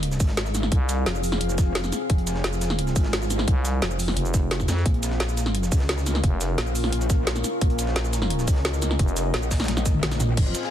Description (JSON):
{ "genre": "dark technical drum and bass", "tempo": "174 BPM", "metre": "4/4", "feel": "straight", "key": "unclear", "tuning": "A4 = 440 Hz", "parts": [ { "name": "deep dark ambient pad", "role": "sustained chords", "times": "0.0-10.7 s", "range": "C4 to F5", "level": "-30 LUFS", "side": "left 1 dB", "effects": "chorus, built-in reverb, sidechain pumping" }, { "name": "metallic wobble bass", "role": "bass", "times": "0.0-10.5 s", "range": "F1 to Db2", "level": "-26 LUFS", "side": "equal", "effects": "distortion, chorus, overdrive, sidechain pumping" }, { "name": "breakbeat sampler-style drum kit", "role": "drums", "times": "0.0-10.7 s", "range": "hi-hat, snare drum", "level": "-39 LUFS", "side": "equal", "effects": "none" }, { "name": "drum and bass drum kit", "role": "drums", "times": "0.0-10.6 s", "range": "crash cymbal, hi-hat, shaker, snare drum, toms", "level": "-27 LUFS", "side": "equal", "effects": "soft clipping on snare" }, { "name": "electronic kick drum", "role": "drums", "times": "0.2-10.4 s", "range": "none", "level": "-22 LUFS", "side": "equal", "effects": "none" }, { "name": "growling FM bass", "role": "bass", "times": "0.7-1.1, 3.5-6.6, 9.0-9.3 s", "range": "F1 to F2", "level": "-25 LUFS", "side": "equal", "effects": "none" }, { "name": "warm chamber string section", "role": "texture", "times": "10.4-10.7 s", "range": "C4 to F5", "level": "-29 LUFS", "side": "left 5 dB", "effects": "sidechain pumping" } ], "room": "little or no reverb", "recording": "dense, heavily limited modern master", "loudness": "-21 LUFS", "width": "side -11 dB against mid", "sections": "0.0-10.4 A section", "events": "drop 0.0-10.4; drum fill 9.7-10.4", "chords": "0.0 Fm; 4.9 Bbm", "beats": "0.03 0.37 | 0.72 1.06 1.41 1.75 | 2.10 2.44 2.79 3.13 | 3.48 3.82 4.17 4.51 | 4.86 5.20 5.55 5.89 | 6.24 6.58 6.92 7.27 | 7.62 7.96 8.30 8.65 | 8.99 9.34 9.68 10.03 | 10.37" }